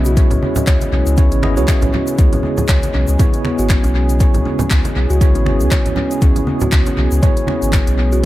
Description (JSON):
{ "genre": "afro house", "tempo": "119 BPM", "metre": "4/4", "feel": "swing 56% on 16ths", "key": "C# minor", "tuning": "A4 = 439 Hz", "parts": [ { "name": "warm analog pad", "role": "sustained chords", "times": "0.0-8.3 s", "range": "C#3 to G#4", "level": "-26 LUFS", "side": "left 2 dB", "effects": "lush chorus, sidechain pumping" }, { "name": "tine electric piano", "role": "stabs", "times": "0.0-8.2 s", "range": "B3 to D#5", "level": "-22 LUFS", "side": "right 2 dB", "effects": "medium stereo tremolo, sidechain pumping, dub echo" }, { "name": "warm sub bass", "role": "bass", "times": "0.0-8.3 s", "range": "G#1 to C#2", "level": "-16 LUFS", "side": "equal", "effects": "sidechain pumping" }, { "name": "kalimba", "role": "arpeggios", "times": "0.1-8.2 s", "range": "B3 to C#5", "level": "-22 LUFS", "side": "equal", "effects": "sidechain pumping, tape echo" }, { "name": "afro-pop drum kit", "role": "drums", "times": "0.1-8.2 s", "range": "finger snaps, handclaps, hi-hat", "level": "-26 LUFS", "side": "left 1 dB", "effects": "dub echo" }, { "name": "egg shaker", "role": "percussion", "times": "0.1-8.2 s", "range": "none", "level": "-34 LUFS", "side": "left 4 dB", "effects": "none" }, { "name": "electronic kick drum", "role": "drums", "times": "0.2-7.8 s", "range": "none", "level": "-14 LUFS", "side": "equal", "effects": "none" }, { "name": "congas", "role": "percussion", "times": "0.2-7.8 s", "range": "none", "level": "-23 LUFS", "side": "right 2 dB", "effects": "dub echo" } ], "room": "light reverb", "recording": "echo-heavy mix", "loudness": "-12 LUFS", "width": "side -16 dB against mid", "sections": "0.0-8.3 A section", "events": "none", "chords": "0.0 C#m7" }